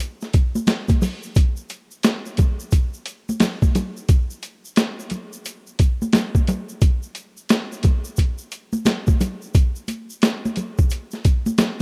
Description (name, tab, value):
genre	hip hop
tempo	88 BPM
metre	4/4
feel	swing 63% on 16ths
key	none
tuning	none
part	boom bap sampler-style drum kit	drums	0.0-11.8 s	hi-hat, kick drum, snare drum	-20 LUFS	equal	none
part	tube shaker and congas	percussion	0.2-11.8 s	none	-29 LUFS	equal	none
room	light reverb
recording	rough home demo mix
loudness	-21 LUFS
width	mono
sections	0.0-11.8 A section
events	none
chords	none